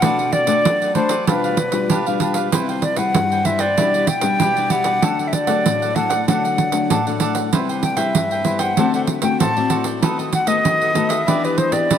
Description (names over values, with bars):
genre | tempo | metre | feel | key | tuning
samba and choro | 96 BPM | 4/4 | straight | G major | A4 = 443 Hz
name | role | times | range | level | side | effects
silver concert flute | melody | 0.0-12.0 s | B4 to A5 | -20 LUFS | left 1 dB | none
cavaquinho | accompaniment | 0.0-12.0 s | D4 to G5 | -24 LUFS | right 3 dB | none
nylon-string guitar | accompaniment | 0.0-12.0 s | G2 to G4 | -22 LUFS | left 6 dB | none
pandeiro | percussion | 0.0-12.0 s | none | -22 LUFS | right 5 dB | none
room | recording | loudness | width
moderate huge ambient reverb, RT60 6.6 s | none | -16 LUFS | side -9 dB against mid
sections
0.0-12.0 A section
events
none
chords
0.0 Bm7; 1.3 G7/B; 2.5 Cmaj7; 3.8 G6/B; 5.0 D; 7.5 Cmaj7; 8.8 D7; 10.0 B7/D#; 11.3 Em7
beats
| 0.03 0.65 1.28 1.90 | 2.53 3.15 3.78 4.40 | 5.03 5.65 6.28 6.90 | 7.53 8.15 8.78 9.40 | 10.03 10.65 11.28 11.90